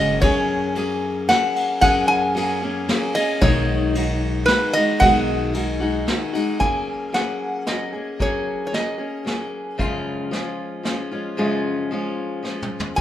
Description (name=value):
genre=acoustic folk duo or small band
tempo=113 BPM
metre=3/4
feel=straight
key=F# major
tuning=A4 = 440 Hz
part: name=metal-body resonator slide guitar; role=melody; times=0.0-9.5, 13.0 s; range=B4 to G#5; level=-20 LUFS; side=equal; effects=none
part: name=picked steel-string acoustic guitar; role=accompaniment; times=0.0-13.0 s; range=F#2 to G#4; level=-23 LUFS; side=left 2 dB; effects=none
part: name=upright bass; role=bass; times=0.0-6.0, 13.0 s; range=F#1 to F#2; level=-25 LUFS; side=equal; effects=none
part: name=vintage brush drum kit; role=drums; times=0.2-13.0 s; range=hi-hat, kick drum, ride cymbal, snare drum, toms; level=-26 LUFS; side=equal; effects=none
room=moderate large studio reverb, RT60 1.1 s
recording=minimal, uncompressed stereo recording, lossy compression artefacts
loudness=-19 LUFS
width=side -12 dB against mid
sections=0.0-6.6 A section; 6.6-13.0 B section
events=drum fill 12.5-13.0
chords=0.0 F#add9; 3.4 B6; 6.6 F#add9; 9.8 C#/F#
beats=| 0.23 0.76 1.29 | 1.82 2.35 2.89 | 3.42 3.95 4.48 | 5.01 5.54 6.07 | 6.60 7.13 7.67 | 8.20 8.73 9.26 | 9.79 10.33 10.86 | 11.39 11.92 12.45 | 12.98